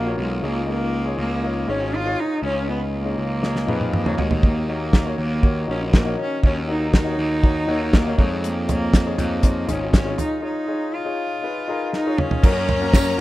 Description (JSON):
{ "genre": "piano-driven pop", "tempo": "120 BPM", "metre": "4/4", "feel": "straight", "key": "unclear", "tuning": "A4 = 440 Hz", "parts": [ { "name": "clear cello", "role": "melody", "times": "0.0-13.2 s", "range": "G#3 to E#4", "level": "-25 LUFS", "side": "right 1 dB", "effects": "none" }, { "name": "clear concert grand piano", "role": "accompaniment", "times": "0.0-13.2 s", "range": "C#3 to D#5", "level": "-27 LUFS", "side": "left 4 dB", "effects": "none" }, { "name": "fuzz picked electric bass", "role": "bass", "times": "0.0-13.2 s", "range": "G#1 to F#2", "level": "-25 LUFS", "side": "right 1 dB", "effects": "overdrive" }, { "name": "damped 70s drum kit", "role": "drums", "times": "3.4-13.1 s", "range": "crash cymbal, hi-hat, kick drum, ride cymbal, snare drum, toms", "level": "-18 LUFS", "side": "equal", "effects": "none" }, { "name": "rich studio violin section", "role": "second line", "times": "12.4-13.2 s", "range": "A#4 to A#5", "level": "-29 LUFS", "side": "right 1 dB", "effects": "tape echo" }, { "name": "tambourine", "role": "percussion", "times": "12.9-13.1 s", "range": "none", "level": "-32 LUFS", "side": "right 6 dB", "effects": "none" } ], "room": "little or no reverb", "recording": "rough home demo mix", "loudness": "-19 LUFS", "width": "side -16 dB against mid", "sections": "0.0-12.4 A section", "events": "drum fill 3.4-4.4, 11.9-12.4; break 10.4-12.4", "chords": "0.4 C#add9; 4.2 D#m7; 8.2 C#add9; 12.4 F#" }